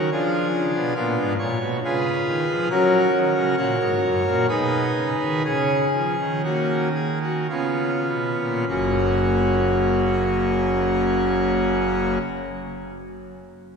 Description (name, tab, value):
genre	classical, chorale-style piece for pipe organ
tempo	50-71 BPM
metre	3/4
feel	rubato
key	F# major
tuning	A4 = 440 Hz
part	pipe organ, full organ	solo	0.0-12.2 s	F#1 to C#5	-20 LUFS	equal	none
room	wet church reverb, RT60 3.7 s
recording	minimal, uncompressed stereo recording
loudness	-19 LUFS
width	side -5 dB against mid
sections	0.0-8.7 A section; 8.7-12.2 B section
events	slowing down 1.4-8.7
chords	0.1 Fdim7; 1.8 C#7; 2.7 F#; 4.5 G#m/B; 5.5 C#69; 7.5 C#7; 8.7 F#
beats	| 0.12 0.97 1.84 | 2.71 3.59 4.50 | 5.46 6.46 7.52 | 8.69 9.87 11.05